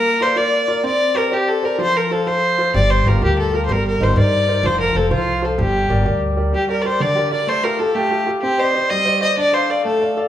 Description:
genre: celtic folk, Celtic jig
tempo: 127 BPM (dotted quarters)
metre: 6/8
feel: straight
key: G minor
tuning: A4 = 439 Hz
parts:
  - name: warm fiddle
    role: melody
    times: 0.0-10.2 s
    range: F4 to Eb5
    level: -17 LUFS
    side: left 1 dB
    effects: none
  - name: bright baby grand piano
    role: accompaniment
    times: 0.0-10.3 s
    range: D3 to F5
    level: -21 LUFS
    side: right 1 dB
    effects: none
  - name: upright bass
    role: bass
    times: 2.7-6.5 s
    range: F1 to G2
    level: -18 LUFS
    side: equal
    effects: none
room: wet large studio reverb, RT60 1.2 s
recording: band playing live in one room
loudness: -15 LUFS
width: side -11 dB against mid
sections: 0.0-6.5 A section; 6.5-10.3 B section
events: none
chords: 0.0 Bb; 0.8 Csus2; 1.8 F; 2.7 Gm7; 3.7 Cm7/G; 4.6 F; 5.6 Gm; 7.5 Fadd9/A; 8.4 Cmadd9; 9.4 Dm

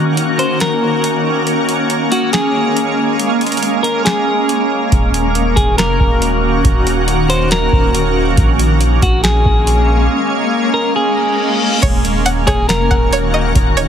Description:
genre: hip hop, atmospheric cloud-rap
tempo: 139 BPM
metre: 4/4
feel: half-time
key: unclear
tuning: A4 = 440 Hz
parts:
  - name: shimmering ambient pad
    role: sustained chords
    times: 0.0-13.9 s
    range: Eb3 to Gb4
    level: -15 LUFS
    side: equal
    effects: chorus, built-in reverb, sidechain pumping
  - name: booming analog drum machine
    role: drums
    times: 0.2-13.9 s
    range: crash cymbal, hi-hat, kick drum, rim click, snare drum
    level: -16 LUFS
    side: equal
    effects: none
  - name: clean electric guitar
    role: melody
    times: 0.4-13.5 s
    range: Gb4 to C5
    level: -19 LUFS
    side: left 1 dB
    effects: ping-pong delay
  - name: long sustained 808-style bass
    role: bass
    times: 4.9-13.9 s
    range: Eb1 to Bb1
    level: -16 LUFS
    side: equal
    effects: none
  - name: reverse cymbal and impact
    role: sound effects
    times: 11.2-13.6 s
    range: none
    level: -22 LUFS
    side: left 4 dB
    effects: none
  - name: string-like resonator pluck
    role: arpeggios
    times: 11.8-13.9 s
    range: Db5 to Gb5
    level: -20 LUFS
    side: right 2 dB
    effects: chorus, ping-pong delay
room: little or no reverb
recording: heavily compressed radio sound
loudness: -12 LUFS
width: side -8 dB against mid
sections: 0.0-11.8 A section; 11.8-13.9 B section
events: break 0.0-4.9, 10.1-11.8; reverse cymbal 11.2-11.8; impact 11.8-13.6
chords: 0.0 Ebm7; 1.5 Bbm7; 4.9 Ebm7; 8.4 Bbm7; 11.8 Ebm7

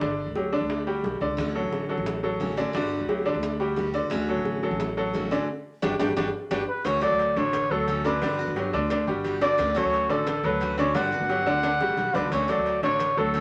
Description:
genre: latin, Cuban son and guajira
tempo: 176 BPM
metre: 4/4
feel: straight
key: D major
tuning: A4 = 440 Hz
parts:
  - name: bright concert grand piano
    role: arpeggios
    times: 0.0-13.4 s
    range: D3 to D5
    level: -30 LUFS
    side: equal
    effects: none
  - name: upright bass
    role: bass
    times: 0.0-13.4 s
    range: G1 to D2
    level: -36 LUFS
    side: equal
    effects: none
  - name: bongos and cowbell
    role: percussion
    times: 0.0-13.4 s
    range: none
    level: -37 LUFS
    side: equal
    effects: none
  - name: picked steel-string acoustic guitar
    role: accompaniment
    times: 1.4-13.4 s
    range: D3 to F#4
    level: -34 LUFS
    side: equal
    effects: none
  - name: trumpet with bucket mute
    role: melody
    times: 6.7-13.4 s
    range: A4 to F#5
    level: -27 LUFS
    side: equal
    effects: none
room: wet studio reverb, RT60 0.8 s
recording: none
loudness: -26 LUFS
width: mono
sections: 0.0-6.9 A section; 6.9-13.4 B section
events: band accent 5.5-6.9; drum fill 6.0-6.9, 11.8-12.3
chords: 0.0 Gmaj7(no3); 1.4 Dmaj7; 2.7 Gmaj7; 4.1 Dmaj7; 5.5 Gmaj7; 6.9 Dmaj7; 8.2 Gmaj7; 9.6 Dmaj7; 11.0 Gmaj7; 12.3 Dmaj7

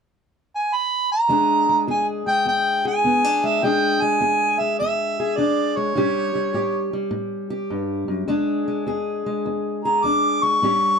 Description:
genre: acoustic country blues, solo or duo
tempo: 103 BPM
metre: 4/4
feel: swing 66% on 8ths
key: E mixolydian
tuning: A4 = 441 Hz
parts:
  - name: mellow harmonica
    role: melody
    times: 0.6-11.0 s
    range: C#5 to D6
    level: -19 LUFS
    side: right 1 dB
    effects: none
  - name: fingerpicked steel-string acoustic guitar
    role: accompaniment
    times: 1.3-11.0 s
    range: E2 to G#4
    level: -22 LUFS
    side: left 2 dB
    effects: none
room: moderate studio reverb, RT60 0.7 s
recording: dark, warm production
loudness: -19 LUFS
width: side -6 dB against mid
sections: 0.0-1.3 A section; 1.3-11.0 B section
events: none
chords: 0.0 N.C.; 1.3 E7; 6.0 A7; 8.3 E7

